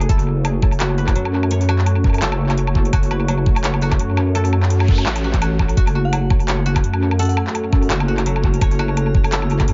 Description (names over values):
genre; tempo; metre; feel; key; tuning
half-time drum and bass; 169 BPM; 4/4; swing 56% on 16ths, half-time; F# minor; A4 = 440 Hz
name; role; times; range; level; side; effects
dark analog pad; sustained chords; 0.0-9.7 s; A3 to C#5; -28 LUFS; equal; chorus, vintage 12-bit sampler grit, sidechain pumping
koto; arpeggios; 0.0-9.7 s; F#3 to C#5; -32 LUFS; equal; analog delay
deep soft wobble bass; bass; 0.0-9.7 s; F#1 to F#2; -21 LUFS; equal; chorus
drum and bass drum kit; drums; 0.0-9.7 s; handclaps, hi-hat, woodblock; -27 LUFS; equal; tape echo
electronic kick drum; drums; 0.1-9.7 s; none; -19 LUFS; equal; none
noise sweep; sound effects; 4.6-5.8 s; none; -35 LUFS; equal; none
metallic inharmonic drone; texture; 6.8-9.7 s; C#4 to C#5; -36 LUFS; equal; chorus, built-in reverb
glassy synth bell; melody; 6.0-7.3 s; F#5; -36 LUFS; equal; chorus, vintage 12-bit sampler grit, analog delay
room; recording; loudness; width
light reverb; echo-heavy mix, nothing above 7.5 kHz; -18 LUFS; mono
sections
0.0-9.7 A section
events
noise sweep 4.6-5.8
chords
0.0 F#m